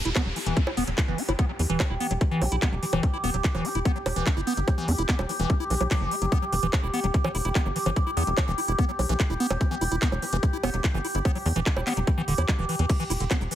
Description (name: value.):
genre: psychedelic trance.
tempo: 146 BPM.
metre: 4/4.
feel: straight.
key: E minor.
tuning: A4 = 439 Hz.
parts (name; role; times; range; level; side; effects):
overtone-sweeping drone; sustained chords; 0.1-13.6 s; G4; -32 LUFS; equal; chorus, built-in reverb, sidechain pumping.
downlifter; sound effects; 0.0-3.0 s; none; -38 LUFS; equal; none.
liquid acid bass; riff; 0.1-13.5 s; D3 to F#4; -30 LUFS; equal; phaser, auto-pan, sidechain pumping, ping-pong delay.
tight sequencer bass; bass; 0.1-13.5 s; E1 to E2; -27 LUFS; equal; none.
techno drum kit; drums; 0.1-13.6 s; bongos, crash cymbal, handclaps, hi-hat; -31 LUFS; right 2 dB; small room ambience.
electronic kick drum; drums; 0.2-13.4 s; none; -24 LUFS; equal; overdrive, small room ambience.
maracas; percussion; 12.9-13.6 s; none; -37 LUFS; right 4 dB; none.
room: digital ambience.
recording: heavily compressed radio sound.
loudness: -23 LUFS.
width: side -12 dB against mid.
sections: 0.0-13.6 A section.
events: none.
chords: 0.0 E5.